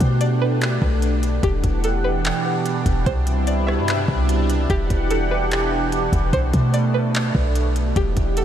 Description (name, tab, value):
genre	hip hop, atmospheric cloud-rap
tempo	147 BPM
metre	4/4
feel	half-time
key	E minor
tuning	A4 = 443 Hz
part	string-like resonator pluck	melody	0.0-8.4 s	G4 to E5	-28 LUFS	right 1 dB	chorus, low-pass filter, analog delay
part	sweeping resonant pad	sustained chords	0.0-8.4 s	B2 to F#5	-22 LUFS	right 1 dB	chorus, phaser, sidechain pumping
part	clean 808-style bass	bass	0.0-8.4 s	E1 to B2	-21 LUFS	equal	none
part	smooth R&B drum kit	drums	0.0-8.4 s	handclaps, hi-hat, kick drum, rim click	-25 LUFS	equal	none
room	moderate huge ambient reverb, RT60 8.2 s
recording	dreamy mix soaked in reverb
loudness	-18 LUFS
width	side -10 dB against mid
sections	0.0-1.4 A section; 1.4-8.4 B section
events	none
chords	0.0 Bm7; 1.4 Em9; 3.1 Cmaj7; 4.7 Em9; 6.3 Bm7